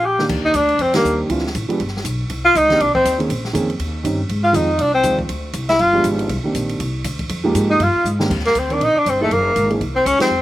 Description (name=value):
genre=jazz, small-group swing and bop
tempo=240 BPM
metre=4/4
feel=swing 59% on 8ths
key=Eb major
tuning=A4 = 438 Hz
part: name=warm tenor saxophone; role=melody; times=0.0-10.4 s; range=A3 to G4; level=-15 LUFS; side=left 1 dB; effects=none
part: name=clear alto saxophone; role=second line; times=0.0-10.4 s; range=A4 to G5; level=-25 LUFS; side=right 3 dB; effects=none
part: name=upright bass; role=bass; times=0.0-10.4 s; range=F#1 to Ab2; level=-23 LUFS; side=equal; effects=none
part: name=dark grand piano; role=accompaniment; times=0.2-10.3 s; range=Eb3 to Bb4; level=-21 LUFS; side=right 2 dB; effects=none
part: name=open jazz drum kit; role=drums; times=0.2-10.3 s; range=crash cymbal, hi-hat, kick drum, ride cymbal, snare drum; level=-28 LUFS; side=equal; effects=none
room=little or no reverb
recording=recorded outdoors, with no room sound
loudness=-15 LUFS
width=side -15 dB against mid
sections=0.3-8.3 A section; 8.3-10.4 B section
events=drum fill 0.0, 8.1; band accent 0.9, 10.2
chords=0.3 Ebmaj7; 1.3 Dm11; 1.8 G; 2.3 Cm9; 3.3 Bbm11; 3.8 Eb6; 4.3 Ab6; 5.3 Cadd9; 5.8 G7b9; 6.3 Cm9; 7.3 Fm11; 7.8 G5; 8.3 Cm9; 9.3 F#69